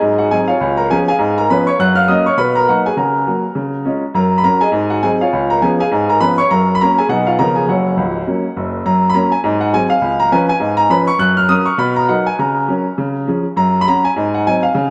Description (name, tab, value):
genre	jazz, stride piano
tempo	204 BPM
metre	4/4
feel	swing 59% on 8ths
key	F# major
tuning	A4 = 440 Hz
part	clear upright piano	solo	0.0-14.9 s	C#1 to F#6	-15 LUFS	equal	none
room	wet spring reverb, RT60 2.2 s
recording	heard from further back in the room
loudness	-15 LUFS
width	mono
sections	0.0-8.8 A section; 8.8-14.9 A section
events	none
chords	0.0 G#7; 0.6 C#7; 1.8 F#; 2.4 Bmaj7; 3.0 F#/C#; 3.6 C#; 4.1 F#; 4.7 G#7; 5.3 C#7; 6.5 F#; 7.1 B; 7.4 C#7; 7.7 F#; 9.4 G#7; 10.0 C#7; 11.2 F#; 11.8 Bmaj7; 12.4 F#/C#; 13.0 C#; 13.6 F#5; 14.1 G#7